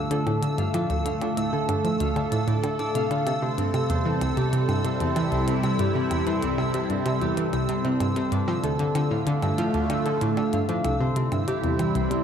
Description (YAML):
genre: ambient, sequencer-driven space music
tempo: 95 BPM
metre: 4/4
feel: straight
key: D minor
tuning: A4 = 436 Hz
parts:
  - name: lush unison pad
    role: sustained chords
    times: 0.0-12.2 s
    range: C3 to Bb4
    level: -27 LUFS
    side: equal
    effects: chorus, phaser
  - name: concert harp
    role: arpeggios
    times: 0.0-12.2 s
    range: B3 to F5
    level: -29 LUFS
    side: moving between left 3 dB and right 3 dB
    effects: auto-pan, analog delay
  - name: pulsing gated texture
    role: texture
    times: 0.0-12.2 s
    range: E6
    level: -37 LUFS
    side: right 2 dB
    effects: chorus, built-in reverb
  - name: analog pluck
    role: riff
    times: 0.1-12.2 s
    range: C2 to F3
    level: -26 LUFS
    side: equal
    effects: chorus, analog delay
  - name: electronic hi-hat and percussion blips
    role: percussion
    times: 0.1-12.2 s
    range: none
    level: -41 LUFS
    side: equal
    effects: analog delay
room: wet plate reverb, RT60 3.7 s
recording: none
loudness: -22 LUFS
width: side -8 dB against mid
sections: 0.0-12.2 A section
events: none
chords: 0.0 Dm; 3.3 C6; 8.3 Dm; 10.8 C7